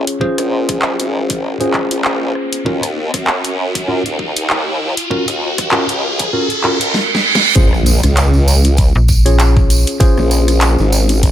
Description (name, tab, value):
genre	glitch hop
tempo	98 BPM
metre	4/4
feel	swing 56% on 16ths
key	Bb minor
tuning	A4 = 438 Hz
part	tine electric piano	stabs	0.0-11.3 s	Db4 to Db5	-19 LUFS	left 1 dB	sidechain pumping, low-pass filter, ping-pong delay
part	formant-sweep wobble bass	bass	0.0-11.3 s	Ab1 to Gb2	-16 LUFS	equal	chorus, high-pass filter
part	riser, reverse cymbal and impact	sound effects	0.8-10.0 s	none	-19 LUFS	right 2 dB	none
part	dubstep drum kit	drums	0.1-11.3 s	handclaps, hi-hat, rim click, snare drum	-19 LUFS	equal	none
part	electronic kick drum	drums	0.2-11.3 s	none	-14 LUFS	equal	high-pass filter on kick
part	tambourine	percussion	7.6-11.3 s	none	-22 LUFS	right 3 dB	none
part	slap-like FM bass	bass	9.0-9.8 s	Bb1	-11 LUFS	equal	tube saturation
room	light reverb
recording	none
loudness	-12 LUFS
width	side -11 dB against mid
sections	0.0-7.6 A section; 7.6-11.3 B section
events	build-up 0.0-7.6; riser 0.8-6.9; reverse cymbal 6.3-7.6; drum fill 6.9-7.6; drop 7.6-11.3; impact 7.6-10.0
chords	0.0 Bbm9; 2.7 Ebm9; 7.6 Bbm9